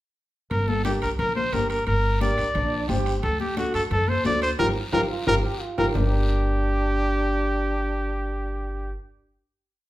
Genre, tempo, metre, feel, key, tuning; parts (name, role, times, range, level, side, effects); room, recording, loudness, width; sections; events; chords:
latin, cumbia; 176 BPM; 4/4; straight; G minor; A4 = 439 Hz
clear trumpet; melody; 0.5-8.9 s; F#4 to D5; -26 LUFS; equal
upright bass; bass; 0.5-8.9 s; G1 to F#2; -26 LUFS; equal
congas; percussion; 0.5-6.0 s; -32 LUFS; left 4 dB
guiro; percussion; 0.5-6.0 s; -40 LUFS; left 2 dB
timbales; percussion; 0.5-6.0 s; -37 LUFS; right 5 dB
dark upright piano; accompaniment; 0.8-8.9 s; D4 to C5; -28 LUFS; left 1 dB
warm trombone; second line; 2.5-8.9 s; D4 to G4; -30 LUFS; equal
moderate large studio reverb, RT60 0.8 s; band playing live in one room; -22 LUFS; side -16 dB against mid
0.5-6.0 A section; 6.0-8.7 final chord
drum fill 4.6-6.0; band accent 4.6-6.0
0.5 Gm; 3.2 D; 4.6 Gm7; 6.0 Gm